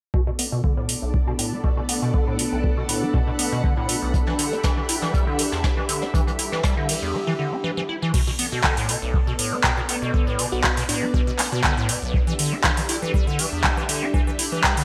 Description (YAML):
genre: acid house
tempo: 120 BPM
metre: 4/4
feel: swing 53% on 16ths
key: B minor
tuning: A4 = 440 Hz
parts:
  - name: string machine, full ensemble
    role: sustained chords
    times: 0.1-14.8 s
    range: B3 to E5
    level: -33 LUFS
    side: equal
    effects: ensemble chorus, sidechain pumping
  - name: liquid acid bass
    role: riff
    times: 0.1-14.8 s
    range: B1 to E4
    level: -29 LUFS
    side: equal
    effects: phaser, lush chorus, delay
  - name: electronic kick drum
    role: drums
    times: 0.1-14.7 s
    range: none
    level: -25 LUFS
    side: equal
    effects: none
  - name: granular cloud pad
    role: texture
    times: 1.3-14.8 s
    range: D4 to B5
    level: -34 LUFS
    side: equal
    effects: built-in reverb, subtle chorus, sidechain pumping
  - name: electro analog drum machine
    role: drums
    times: 0.4-14.8 s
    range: crash cymbal, handclaps, hi-hat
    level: -26 LUFS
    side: equal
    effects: gated reverb
  - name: vintage brush drum kit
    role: drums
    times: 4.1-7.0 s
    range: hi-hat, snare drum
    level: -35 LUFS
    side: equal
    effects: sidechain pumping on hats, high-pass filter on hats, high-pass filter on snare, high-pass filter on room, gated reverb
  - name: bell-like FM electric piano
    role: melody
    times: 10.5-11.1 s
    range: D4 to F#4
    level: -34 LUFS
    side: equal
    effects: chorus, phaser, delay
room: moderate lush hall reverb, RT60 1.7 s, digital ambience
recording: bright 1980s-style digital production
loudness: -22 LUFS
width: mono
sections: 0.1-8.1 A section; 8.1-14.8 B section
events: filter sweep on acid bass 0.1-8.1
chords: 0.1 Bm7; 4.1 Em7; 8.1 Bm7; 12.1 Em7